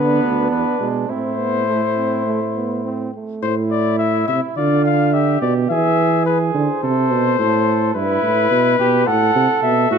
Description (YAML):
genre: classical, imitative canzona for brass ensemble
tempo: 106 BPM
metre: 4/4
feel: straight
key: A minor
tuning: A4 = 440 Hz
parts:
  - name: mellow trumpet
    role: melody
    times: 0.0-10.0 s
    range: B4 to F#5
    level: -20 LUFS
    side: left 11 dB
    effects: none
  - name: warm flugelhorn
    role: second line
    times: 0.0-10.0 s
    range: D4 to A4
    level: -22 LUFS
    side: right 8 dB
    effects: none
  - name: warm trombone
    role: accompaniment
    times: 0.0-3.4 s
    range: G#3 to C4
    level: -23 LUFS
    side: right 3 dB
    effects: none
  - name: clear tuba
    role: bass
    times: 0.0-10.0 s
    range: D2 to E3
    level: -19 LUFS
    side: right 4 dB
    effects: none
room: moderate recital hall reverb, RT60 1.4 s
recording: none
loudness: -15 LUFS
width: side -6 dB against mid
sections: 0.0-3.4 A section; 3.4-10.0 B section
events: none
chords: 0.0 Bm/D; 0.5 E; 1.1 Am; 3.4 A5; 4.6 Bdim/D; 5.7 E; 6.8 Am; 8.0 Em/G; 9.1 F#dim/A